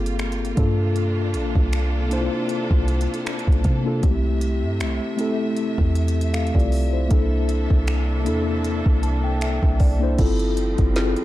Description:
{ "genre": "contemporary R&B", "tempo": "78 BPM", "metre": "4/4", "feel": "swing 54% on 16ths", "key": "unclear", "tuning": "A4 = 436 Hz", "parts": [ { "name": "mellow tine electric piano", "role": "accompaniment", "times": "0.0-11.2 s", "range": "G#3 to A5", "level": "-24 LUFS", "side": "left 2 dB", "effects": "medium stereo tremolo" }, { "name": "bright studio string section", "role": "sustained chords", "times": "0.0-11.2 s", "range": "C3 to E5", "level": "-32 LUFS", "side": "right 2 dB", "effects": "none" }, { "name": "clean 808-style bass", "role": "bass", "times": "0.0-11.2 s", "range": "G1 to C3", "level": "-22 LUFS", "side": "equal", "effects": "none" }, { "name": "smooth R&B drum kit", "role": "drums", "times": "0.1-11.2 s", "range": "crash cymbal, finger snaps, hi-hat, kick drum, snare drum", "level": "-23 LUFS", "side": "equal", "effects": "none" } ], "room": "digital ambience", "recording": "dark, warm production", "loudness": "-19 LUFS", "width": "side -15 dB against mid", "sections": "0.0-10.2 A section; 10.2-11.2 B section", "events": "tine electric piano fill 8.7-10.2", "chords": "0.0 Gm11; 0.6 C13sus4; 4.0 C69; 7.1 C13; 10.2 G13sus4" }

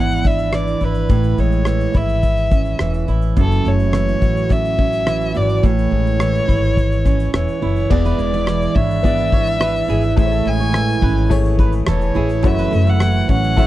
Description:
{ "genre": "acoustic pop", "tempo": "106 BPM", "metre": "4/4", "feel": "straight", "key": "A major", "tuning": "A4 = 440 Hz", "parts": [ { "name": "warm violin", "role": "melody", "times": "0.0-13.7 s", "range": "A4 to G#5", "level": "-22 LUFS", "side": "left 2 dB", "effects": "none" }, { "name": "fingerpicked steel-string acoustic guitar", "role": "accompaniment", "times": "0.0-13.7 s", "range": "E2 to F#4", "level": "-21 LUFS", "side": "right 8 dB", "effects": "none" }, { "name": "upright bass", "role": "bass", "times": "0.0-13.7 s", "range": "E1 to A1", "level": "-19 LUFS", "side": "left 1 dB", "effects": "none" }, { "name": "cloth-damped thuddy drum kit", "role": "drums", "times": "0.1-13.7 s", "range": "crash cymbal, kick drum, rim click, shaker", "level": "-18 LUFS", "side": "left 1 dB", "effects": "none" }, { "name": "bright upright piano", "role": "accompaniment", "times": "7.9-13.7 s", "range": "A3 to D5", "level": "-26 LUFS", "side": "left 8 dB", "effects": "none" }, { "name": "fingerpicked steel-string acoustic guitar", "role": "arpeggios", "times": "8.1-13.7 s", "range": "G#4 to E5", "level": "-29 LUFS", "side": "right 4 dB", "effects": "none" } ], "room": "little or no reverb", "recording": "dry, close 1970s-style studio recording", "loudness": "-14 LUFS", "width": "side -15 dB against mid", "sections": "0.0-7.9 A section; 7.9-13.7 B section", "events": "none", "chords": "0.0 E7; 1.1 Amaj7; 3.4 F#m7; 5.6 Amaj7; 7.9 E7; 10.2 Amaj7; 12.4 F#m7" }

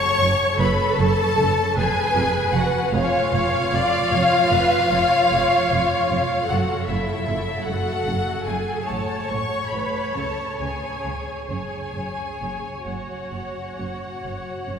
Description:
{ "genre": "classical, slow romantic movement for string orchestra", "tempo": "43-52 BPM (dotted quarters)", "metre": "12/8", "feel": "rubato", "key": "F# minor", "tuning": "A4 = 440 Hz", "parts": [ { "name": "warm studio violin section", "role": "melody", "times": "0.0-14.8 s", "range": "E5 to C#6", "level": "-23 LUFS", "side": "left 3 dB", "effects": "none" }, { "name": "warm studio violin section", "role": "second line", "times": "0.0-14.8 s", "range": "E4 to C#5", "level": "-27 LUFS", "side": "left 1 dB", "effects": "none" }, { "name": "rich studio viola section", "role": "accompaniment", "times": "0.0-14.8 s", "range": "A4 to D5", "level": "-26 LUFS", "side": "right 1 dB", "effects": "none" }, { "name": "rich studio cello section", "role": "bass", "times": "0.2-14.8 s", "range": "E#2 to C#3", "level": "-28 LUFS", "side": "right 2 dB", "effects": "none" }, { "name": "warm studio double bass section", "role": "bass", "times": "0.2-14.8 s", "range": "E#1 to C#2", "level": "-29 LUFS", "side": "right 2 dB", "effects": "none" } ], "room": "wet cathedral reverb, RT60 5.2 s", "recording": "recorded in a church or concert hall", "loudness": "-19 LUFS", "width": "side -7 dB against mid", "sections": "0.0-14.8 A section", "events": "none", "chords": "0.0 F#m; 1.8 C#7/E#; 6.5 F#m; 8.9 Aadd9; 10.2 C#5; 11.5 F#5" }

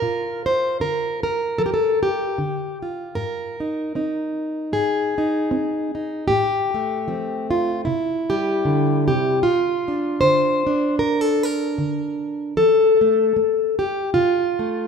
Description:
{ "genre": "folk, solo fingerstyle acoustic guitar", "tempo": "76 BPM", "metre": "4/4", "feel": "swing 56% on 8ths", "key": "unclear", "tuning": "A4 = 440 Hz", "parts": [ { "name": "fingerpicked plugged-in steel-string acoustic guitar", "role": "solo", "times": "0.0-14.9 s", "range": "Ab2 to C5", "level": "-19 LUFS", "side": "left 1 dB", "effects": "none" } ], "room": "light reverb", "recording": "minimal, uncompressed stereo recording", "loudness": "-19 LUFS", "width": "side -6 dB against mid", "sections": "0.0-9.4 A section; 9.4-14.9 B section", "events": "none", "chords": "0.0 Bb; 3.2 Ab; 6.3 F/A; 7.9 C; 9.4 Bb; 12.6 F" }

